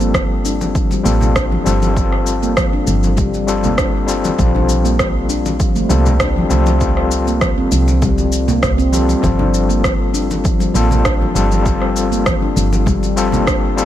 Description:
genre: organic downtempo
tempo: 99 BPM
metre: 4/4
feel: swing 53% on 16ths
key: G minor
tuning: A4 = 442 Hz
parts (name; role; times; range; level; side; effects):
- overdriven tine electric piano; accompaniment; 0.0-13.8 s; G3 to A4; -19 LUFS; left 4 dB; fast tremolo, vintage 12-bit sampler grit, sidechain pumping, ping-pong delay
- handpan; arpeggios; 0.0-13.8 s; F3 to G4; -20 LUFS; equal; ping-pong delay
- woody FM bass; bass; 0.0-13.8 s; G1 to C2; -18 LUFS; right 1 dB; tube saturation
- electronic shaker and rim click; drums; 0.0-13.8 s; none; -22 LUFS; right 1 dB; overdrive
- electronic kick drum; drums; 0.1-13.6 s; none; -20 LUFS; right 1 dB; overdrive
- congas; percussion; 0.1-13.4 s; none; -25 LUFS; left 1 dB; none
room: light reverb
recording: none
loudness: -13 LUFS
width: side -12 dB against mid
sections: 0.0-13.8 A section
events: none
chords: 0.0 Gm7; 4.4 Bbmaj7; 6.8 C7sus4; 9.2 Gm7

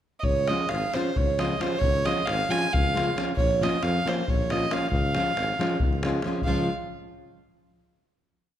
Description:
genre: balkan folk, Balkan wedding band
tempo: 271 BPM (eighths)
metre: 7/8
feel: straight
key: Db major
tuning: A4 = 440 Hz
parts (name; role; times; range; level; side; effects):
- rich violin; melody; 0.2-6.7 s; C5 to Ab5; -27 LUFS; right 3 dB; none
- mellow tuba; bass; 0.2-6.7 s; Ab1 to F2; -30 LUFS; equal; none
- davul; percussion; 0.2-6.7 s; none; -28 LUFS; left 2 dB; none
- nylon-string guitar; accompaniment; 0.5-6.7 s; F3 to F4; -29 LUFS; left 1 dB; none
room: moderate recital hall reverb, RT60 1.6 s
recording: none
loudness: -23 LUFS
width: side -11 dB against mid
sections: 0.0-0.2 pickup bar; 0.2-6.4 A section; 6.4-8.0 final chord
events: none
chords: 0.2 Db; 3.4 Bbm; 4.9 Db

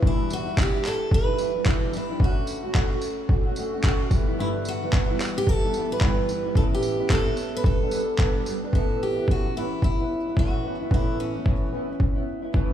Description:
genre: acoustic pop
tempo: 110 BPM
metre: 4/4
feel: swing 60% on 16ths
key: A mixolydian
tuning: A4 = 441 Hz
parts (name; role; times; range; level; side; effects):
- nylon-string guitar; accompaniment; 0.0-12.7 s; E2 to A4; -28 LUFS; equal; double-tracked left and right
- boom bap sampler-style drum kit; drums; 0.0-12.7 s; handclaps, kick drum, tambourine; -22 LUFS; equal; overdrive
- picked steel-string acoustic guitar; melody; 0.1-12.2 s; C#4 to B4; -28 LUFS; equal; slapback echo, digital delay
room: light reverb, small room reverb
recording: live gig heard through the venue's PA, club reverb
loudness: -22 LUFS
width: side -10 dB against mid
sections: 0.0-8.7 A section; 8.7-12.7 B section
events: none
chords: 0.0 Em7; 2.2 Dmaj7; 4.1 G6; 6.6 Aadd9; 7.6 Gadd9; 8.7 Aadd9

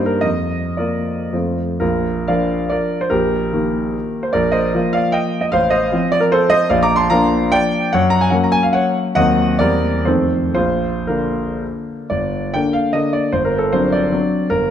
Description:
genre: classical, romantic triple-time dance for piano with dotted rhythms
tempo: 104-169 BPM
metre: 3/4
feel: rubato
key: Bb major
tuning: A4 = 439 Hz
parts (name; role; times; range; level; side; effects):
- clear concert grand piano; solo; 0.0-14.7 s; G1 to D6; -15 LUFS; equal; none
room: moderate scoring stage reverb, RT60 1.8 s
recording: dark, warm production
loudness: -15 LUFS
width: side -9 dB against mid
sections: 0.0-1.8 A section; 1.8-12.1 B section; 12.1-14.7 C section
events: none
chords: 0.3 Bb/F; 1.3 F; 1.8 Bb; 3.1 Eb/Bb; 4.3 Bb; 5.5 F/A; 6.7 Bb; 7.9 Gb; 9.2 Cm7b5/Eb; 9.6 C7/E; 10.1 F7; 10.5 Bb; 12.1 Gm; 13.3 D7/G

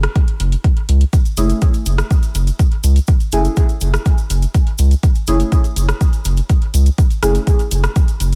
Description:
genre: dub techno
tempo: 123 BPM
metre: 4/4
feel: straight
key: F# minor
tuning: A4 = 436 Hz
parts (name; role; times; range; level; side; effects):
- round analog bass; bass; 0.0-8.4 s; F#1 to C#2; -16 LUFS; equal; sidechain pumping
- deep house drum kit; drums; 0.0-8.4 s; hi-hat, rim click; -28 LUFS; equal; dub echo
- electronic kick drum; drums; 0.2-8.1 s; none; -15 LUFS; equal; none
- cabasa; percussion; 1.1-8.4 s; none; -34 LUFS; equal; none
- deep mellow chord stab; stabs; 1.4-7.4 s; A3 to G#4; -24 LUFS; equal; chorus, phaser, sidechain pumping, dub echo
room: little or no reverb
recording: echo-heavy mix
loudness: -15 LUFS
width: mono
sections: 0.0-8.4 A section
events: none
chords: 0.0 F#m9

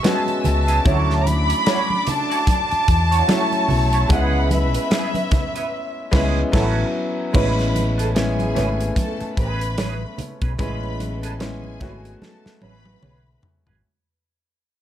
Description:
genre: lush 1970s-style soul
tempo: 74 BPM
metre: 4/4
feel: swing 58% on 16ths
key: A major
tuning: A4 = 440 Hz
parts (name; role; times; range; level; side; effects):
- warm chamber violin section; melody; 0.0-6.5 s; E5 to B5; -22 LUFS; equal; none
- rich studio string section; second line; 0.0-13.4 s; D4 to E6; -30 LUFS; equal; none
- clear baby grand piano; accompaniment; 0.0-13.9 s; E3 to F#4; -25 LUFS; left 2 dB; none
- clean electric guitar; riff; 0.0-13.8 s; B3 to D5; -29 LUFS; right 7 dB; wah
- modern studio drum kit; drums; 0.0-13.8 s; crash cymbal, hi-hat, kick drum, snare drum, toms; -23 LUFS; equal; none
- congas; percussion; 0.0-13.6 s; none; -28 LUFS; right 3 dB; none
- hollow-body short-scale fingered electric bass; bass; 0.5-13.8 s; G#1 to E2; -21 LUFS; equal; none
room: small room reverb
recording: none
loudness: -17 LUFS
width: side -11 dB against mid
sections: 0.0-7.3 A section; 7.3-13.8 B section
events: band accent 5.7-7.3; fade-out 7.3-13.8; drum fill 12.2-13.8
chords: 0.0 Amaj9; 0.9 Dmaj9; 4.1 C#m7; 6.5 A69; 7.3 Amaj9

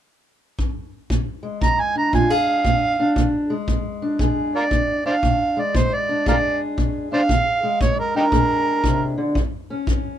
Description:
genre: acoustic country blues, solo or duo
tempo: 116 BPM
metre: 4/4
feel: swing 64% on 8ths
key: Bb mixolydian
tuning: A4 = 439 Hz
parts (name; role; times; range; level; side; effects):
- kick drum; drums; 0.6-10.0 s; none; -23 LUFS; equal; none
- fingerpicked steel-string acoustic guitar; accompaniment; 1.1-10.2 s; Bb2 to Ab4; -22 LUFS; left 1 dB; none
- overdriven harmonica; melody; 1.6-9.2 s; Eb4 to Bb5; -20 LUFS; right 3 dB; none
room: moderate booth ambience, RT60 0.2 s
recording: minimal, uncompressed stereo recording, lossy compression artefacts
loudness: -18 LUFS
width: side -10 dB against mid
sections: 0.0-1.1 A section; 1.1-10.2 B section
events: none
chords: 0.0 N.C.; 1.1 Bb7; 9.4 Eb7(no3)

